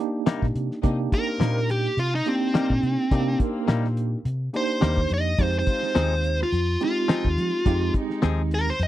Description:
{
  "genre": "straight-eighth soul blues",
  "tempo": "106 BPM",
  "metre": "4/4",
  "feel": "swing 55% on 16ths",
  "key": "C minor",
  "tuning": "A4 = 440 Hz",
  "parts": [
    { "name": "tine electric piano", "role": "accompaniment", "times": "0.0-8.7 s", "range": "Ab3 to G4", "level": "-28 LUFS", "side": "right 4 dB", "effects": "fast stereo tremolo" },
    { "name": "direct-recorded clean electric guitar", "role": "stabs", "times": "0.3-8.4 s", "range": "C3 to Ab4", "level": "-29 LUFS", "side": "left 8 dB", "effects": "none" },
    { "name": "cloth-damped thuddy drum kit", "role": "drums", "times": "0.3-8.9 s", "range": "hi-hat, kick drum, snare drum", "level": "-23 LUFS", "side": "equal", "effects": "none" },
    { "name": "vintage muted fingered electric bass", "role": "bass", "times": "0.4-8.9 s", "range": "Eb2 to F3", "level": "-25 LUFS", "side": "equal", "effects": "none" },
    { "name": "warm studio string section", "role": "sustained chords", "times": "0.8-8.5 s", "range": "Ab3 to F4", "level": "-36 LUFS", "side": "left 2 dB", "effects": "none" },
    { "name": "dark smooth lead guitar", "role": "melody", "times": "1.1-8.9 s", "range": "C4 to Eb5", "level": "-25 LUFS", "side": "equal", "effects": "overdrive, slapback echo" }
  ],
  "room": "little or no reverb",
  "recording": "dry, close 1970s-style studio recording",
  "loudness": "-21 LUFS",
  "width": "side -14 dB against mid",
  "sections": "0.0-8.9 A section",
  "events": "lead electric guitar solo 0.0-8.9",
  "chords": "0.0 Cm7; 5.4 Fm7"
}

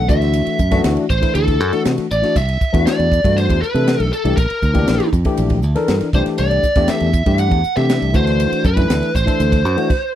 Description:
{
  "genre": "electric jazz fusion",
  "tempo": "119 BPM",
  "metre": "4/4",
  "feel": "straight",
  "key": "C lydian",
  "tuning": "A4 = 439 Hz",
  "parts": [
    { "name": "biting lead guitar", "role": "melody", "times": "0.0-10.1 s", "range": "A4 to F#5", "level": "-20 LUFS", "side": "right 1 dB", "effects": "overdrive, slapback echo" },
    { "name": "overdriven tine electric piano", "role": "accompaniment", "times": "0.0-9.9 s", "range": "E3 to Bb4", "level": "-20 LUFS", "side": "left 4 dB", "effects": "analog chorus" },
    { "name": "modern bright fingered electric bass", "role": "bass", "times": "0.0-9.8 s", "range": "A1 to C3", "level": "-18 LUFS", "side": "right 1 dB", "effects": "none" },
    { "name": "tight funk drum kit", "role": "drums", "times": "0.1-10.0 s", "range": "crash cymbal, hi-hat, kick drum, ride cymbal, snare drum", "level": "-20 LUFS", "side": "equal", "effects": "none" }
  ],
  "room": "little or no reverb",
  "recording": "dry, close 1970s-style studio recording",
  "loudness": "-14 LUFS",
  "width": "side -11 dB against mid",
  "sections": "0.0-10.2 A section",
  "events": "none",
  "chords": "0.1 Dadd9; 2.4 Cmaj9; 4.4 Bbmaj7; 6.1 Cadd9; 8.1 D13"
}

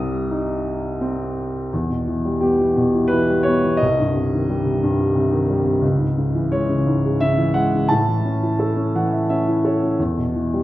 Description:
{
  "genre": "classical, lyrical solo piano",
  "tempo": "86 BPM",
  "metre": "3/4",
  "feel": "rubato",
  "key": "unclear",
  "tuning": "A4 = 440 Hz",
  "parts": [
    { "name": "dark baby grand piano", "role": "solo", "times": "0.0-10.6 s", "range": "C2 to Eb6", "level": "-17 LUFS", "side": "equal", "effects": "none" }
  ],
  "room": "wet recital hall reverb, RT60 1.4 s",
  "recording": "recorded in a church or concert hall",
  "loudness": "-17 LUFS",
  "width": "side -15 dB against mid",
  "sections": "0.0-1.7 A section; 1.7-10.6 B section",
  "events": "grand piano fill 8.6-10.0",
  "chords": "0.0 Cm; 1.7 Em; 3.8 Cm; 5.8 C#m; 7.9 A; 10.0 Em"
}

